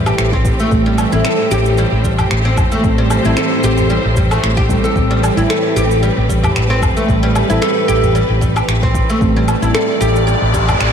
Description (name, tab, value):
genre	organic downtempo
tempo	113 BPM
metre	4/4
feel	swing 54% on 16ths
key	A minor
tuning	A4 = 441 Hz
part	deep mellow chord stab	accompaniment	0.0-10.9 s	G3 to A4	-23 LUFS	left 1 dB	chorus, sidechain pumping, diffuse ambient delay
part	clear studio string section	sustained chords	0.0-10.9 s	A2 to D5	-20 LUFS	equal	sidechain pumping
part	oud	arpeggios	0.0-10.9 s	G3 to A4	-17 LUFS	right 1 dB	diffuse ambient delay
part	fretless electric bass	bass	0.0-10.9 s	A1	-16 LUFS	equal	none
part	electronic woodblock, shaker and finger snaps	drums	0.1-10.9 s	none	-24 LUFS	equal	none
part	electronic kick drum	drums	0.3-10.7 s	none	-19 LUFS	equal	none
part	udu	percussion	2.2-10.8 s	none	-23 LUFS	left 2 dB	none
part	riser	sound effects	9.6-10.9 s	none	-21 LUFS	equal	none
room	moderate lush hall reverb, RT60 2.2 s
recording	dreamy mix soaked in reverb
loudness	-12 LUFS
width	side -7 dB against mid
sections	0.0-10.9 A section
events	riser 9.6-10.9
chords	0.0 Am7